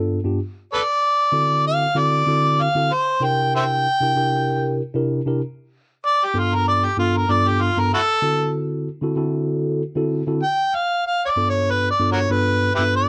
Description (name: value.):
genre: blues.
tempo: 96 BPM.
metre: 4/4.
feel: swing 56% on 16ths.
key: G mixolydian.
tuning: A4 = 440 Hz.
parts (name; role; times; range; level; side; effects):
mellow tine electric piano; accompaniment; 0.0-13.1 s; G2 to Bb4; -24 LUFS; equal; phaser.
mellow harmonica; melody; 0.7-13.1 s; E4 to G5; -21 LUFS; equal; overdrive.
room: light reverb.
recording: none.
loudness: -20 LUFS.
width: mono.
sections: 0.0-10.4 A section; 10.4-13.1 B section.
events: harmonica solo 0.0-10.4.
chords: 0.4 D9; 2.9 C9; 5.4 G9; 7.9 D9; 10.4 G9.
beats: | 0.39 1.01 1.64 2.27 | 2.90 3.52 4.15 4.78 | 5.40 6.03 6.66 7.29 | 7.91 8.54 9.17 9.79 | 10.42 11.05 11.68 12.30 | 12.93.